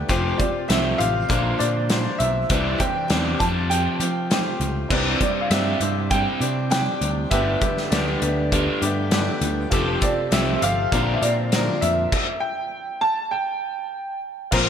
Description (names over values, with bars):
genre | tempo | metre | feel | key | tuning
folk rock and heartland rock | 100 BPM | 4/4 | straight | C major | A4 = 440 Hz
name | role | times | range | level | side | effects
picked swing-style acoustic guitar | accompaniment | 0.0-14.7 s | G2 to C5 | -27 LUFS | left 3 dB | none
picked electric bass | bass | 0.0-14.7 s | F1 to F3 | -25 LUFS | equal | none
crunchy overdriven guitar | riff | 0.1-14.7 s | F2 to F4 | -27 LUFS | equal | lush chorus
loose indie drum kit | drums | 0.1-14.7 s | crash cymbal, hi-hat, kick drum, snare drum | -24 LUFS | equal | gated reverb
clear grand piano | melody | 0.4-14.2 s | D5 to A5 | -25 LUFS | right 1 dB | analog chorus
clear upright piano | accompaniment | 4.9-14.7 s | D4 to D5 | -35 LUFS | right 2 dB | none
mellow tonewheel organ | sustained chords | 4.9-14.7 s | F3 to C6 | -34 LUFS | right 2 dB | none
room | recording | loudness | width
moderate lush hall reverb, RT60 2.6 s | bright 1980s-style digital production | -19 LUFS | side -8 dB against mid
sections
0.0-4.9 A section; 4.9-14.5 A section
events
stop 12.1-14.5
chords
0.1 Fadd9; 1.3 Bbadd9; 2.5 Cadd9; 3.4 Fadd9; 4.9 Cadd9; 7.3 Gadd9; 9.7 Fadd9; 10.9 Bbadd9; 12.1 N.C.